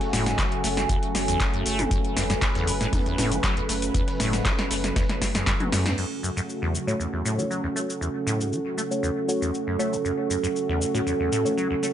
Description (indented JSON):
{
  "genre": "acid house",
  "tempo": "118 BPM",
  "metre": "4/4",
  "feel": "straight",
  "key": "F# minor",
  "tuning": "A4 = 439 Hz",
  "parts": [
    { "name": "warm analog pad", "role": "sustained chords", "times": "0.0-11.9 s", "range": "C#3 to B4", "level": "-32 LUFS", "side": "equal", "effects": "chorus, sidechain pumping" },
    { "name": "dusty soul sampler-style drum kit", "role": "drums", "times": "0.0-6.0 s", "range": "hi-hat, snare drum", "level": "-39 LUFS", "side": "left 1 dB", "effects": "none" },
    { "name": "electro analog drum machine", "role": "drums", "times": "0.0-11.9 s", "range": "cabasa, crash cymbal, handclaps, hi-hat, snare drum, toms", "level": "-28 LUFS", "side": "left 1 dB", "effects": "none" },
    { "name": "warbly tape-like pad", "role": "texture", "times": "0.0-11.9 s", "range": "C#4 to G#5", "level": "-29 LUFS", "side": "right 2 dB", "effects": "chorus, built-in reverb, sidechain pumping" },
    { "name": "acid bass, saw", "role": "riff", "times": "0.1-11.9 s", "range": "E2 to A3", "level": "-29 LUFS", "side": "equal", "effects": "lush chorus, sidechain pumping, digital delay" },
    { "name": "warm sub bass", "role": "bass", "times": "0.1-5.9 s", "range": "F#1 to F#2", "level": "-31 LUFS", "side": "equal", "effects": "tube saturation, sidechain pumping" },
    { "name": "electronic kick drum", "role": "drums", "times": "0.4-5.6 s", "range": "none", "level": "-26 LUFS", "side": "equal", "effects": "none" },
    { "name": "deep mellow chord stab", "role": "stabs", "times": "6.9-11.5 s", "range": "A3 to C#5", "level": "-31 LUFS", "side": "left 2 dB", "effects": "chorus, digital delay" }
  ],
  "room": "moderate studio reverb, RT60 0.7 s",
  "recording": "nothing above 10.9 kHz",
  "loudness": "-22 LUFS",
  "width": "side -10 dB against mid",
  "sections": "0.0-6.0 A section; 6.0-11.9 B section",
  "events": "drum fill 5.0-6.0; band accent 5.9",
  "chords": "0.0 F#m"
}